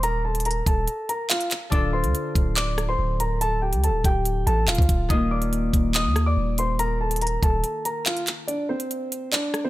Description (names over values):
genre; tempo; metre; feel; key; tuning
hip hop, drill; 142 BPM; 4/4; half-time; unclear; A4 = 437 Hz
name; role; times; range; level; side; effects
dark concert grand piano; melody; 0.0-9.7 s; C4 to Eb6; -26 LUFS; equal; none
long sustained 808-style bass; bass; 0.0-7.6 s; D1 to Eb2; -24 LUFS; equal; none
drill drum kit; drums; 0.0-9.6 s; handclaps, hi-hat, kick drum, rim click; -24 LUFS; equal; none
Celtic harp; accompaniment; 1.7-8.5 s; D3 to A4; -30 LUFS; left 3 dB; none
room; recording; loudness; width
studio reverb; none; -21 LUFS; side -16 dB against mid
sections
0.0-8.5 A section; 8.5-9.7 B section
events
break 0.9-1.7, 7.6-8.5, 8.5-9.7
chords
0.0 Ebsus2; 1.7 Dm; 5.1 Ebsus2; 8.5 N.C.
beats
| 0.03 0.45 0.88 1.30 | 1.72 2.14 2.57 2.99 | 3.41 3.83 4.26 4.68 | 5.10 5.52 5.95 6.37 | 6.79 7.21 7.64 8.06 | 8.48 8.90 9.33